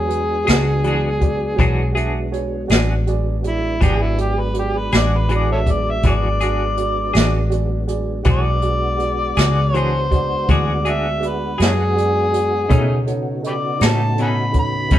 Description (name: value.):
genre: slow blues.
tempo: 54 BPM (dotted quarters).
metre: 12/8.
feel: straight.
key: E mixolydian.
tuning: A4 = 440 Hz.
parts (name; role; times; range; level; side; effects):
overdriven harmonica; melody; 0.0-15.0 s; C#4 to B5; -22 LUFS; left 1 dB; none.
mellow tonewheel organ; sustained chords; 0.0-15.0 s; C#3 to F#4; -27 LUFS; equal; slow rotary speaker, chorus vibrato.
vintage muted fingered electric bass; bass; 0.0-15.0 s; G#1 to B2; -20 LUFS; equal; none.
dark concert grand piano; accompaniment; 0.1-15.0 s; D#4 to E5; -27 LUFS; right 6 dB; none.
jazz brush drum kit; drums; 0.1-15.0 s; hi-hat, kick drum, snare drum; -19 LUFS; equal; none.
clean electric guitar; accompaniment; 0.5-15.0 s; B2 to G#4; -24 LUFS; left 2 dB; tremolo.
room: light reverb.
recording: band playing live in one room.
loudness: -16 LUFS.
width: side -12 dB against mid.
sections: 0.0-15.0 A section.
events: harmonica solo 0.0-15.0.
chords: 0.0 E9; 12.7 B9.